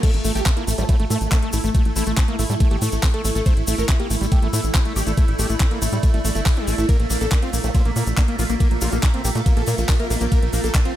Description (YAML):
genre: psychedelic trance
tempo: 140 BPM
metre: 4/4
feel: straight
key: unclear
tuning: A4 = 440 Hz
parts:
  - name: dense compressed supersaw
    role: melody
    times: 0.0-10.9 s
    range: A3 to C5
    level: -28 LUFS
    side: equal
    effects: phaser, sidechain pumping, ping-pong delay
  - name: overtone-sweeping drone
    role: sustained chords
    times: 0.0-11.0 s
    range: A3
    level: -31 LUFS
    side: right 4 dB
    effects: chorus, built-in reverb, sidechain pumping
  - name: overdriven acid bass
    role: riff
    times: 0.0-10.9 s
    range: G3 to E4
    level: -29 LUFS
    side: moving between left 5 dB and right 4 dB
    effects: auto-pan, sidechain pumping, ping-pong delay
  - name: electronic kick drum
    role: drums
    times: 0.0-10.8 s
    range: none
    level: -17 LUFS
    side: equal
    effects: studio reverb
  - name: garage drum kit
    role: drums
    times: 0.0-10.9 s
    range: crash cymbal, handclaps, hi-hat, ride cymbal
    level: -29 LUFS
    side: equal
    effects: studio reverb
  - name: egg shaker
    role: percussion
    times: 0.0-10.8 s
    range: none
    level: -30 LUFS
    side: left 3 dB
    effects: none
  - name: granular cloud pad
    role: texture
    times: 0.0-11.0 s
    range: E4 to Bb5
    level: -32 LUFS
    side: right 2 dB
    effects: built-in reverb, sidechain pumping
  - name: tight sequencer bass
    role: bass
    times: 0.1-10.7 s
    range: G1 to Bb2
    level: -22 LUFS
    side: equal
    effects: tube saturation
  - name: vowel-sweep wobble bass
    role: second line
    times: 0.8-1.4, 7.6-10.3 s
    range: G3 to C4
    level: -36 LUFS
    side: equal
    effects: analog chorus, vintage 12-bit sampler grit, sidechain pumping, high-pass filter, ping-pong delay
room: little or no reverb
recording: none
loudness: -17 LUFS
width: side -13 dB against mid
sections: 0.0-11.0 A section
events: none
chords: 0.0 A5; 6.9 Bb5